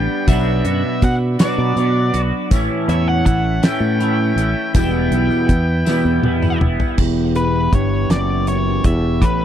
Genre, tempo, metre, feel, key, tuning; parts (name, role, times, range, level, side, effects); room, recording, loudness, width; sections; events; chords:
psychedelic rock; 54 BPM (dotted quarters); 6/8; straight; E dorian; A4 = 440 Hz
octave-fuzz lead guitar; melody; 0.0-9.4 s; B4 to G5; -24 LUFS; left 2 dB; distortion, tape echo
combo organ; sustained chords; 0.0-9.4 s; E3 to B5; -29 LUFS; right 6 dB
twangy electric guitar; riff; 0.0-9.4 s; E2 to G4; -19 LUFS; equal; rotary speaker, double-tracked left and right
fingered electric bass; bass; 0.0-9.4 s; E1 to B2; -19 LUFS; equal
damped 70s drum kit; drums; 0.3-9.4 s; crash cymbal, hi-hat, kick drum, snare drum, toms; -16 LUFS; equal
tambourine; percussion; 0.3-6.9 s; -39 LUFS; left 10 dB
small room ambience; dry, close 1970s-style studio recording; -14 LUFS; side -10 dB against mid
0.0-7.0 A section; 7.0-9.4 B section
drum fill 5.9-7.0; lead electric guitar solo 7.0-9.4
0.3 Bm; 2.5 A; 4.8 Em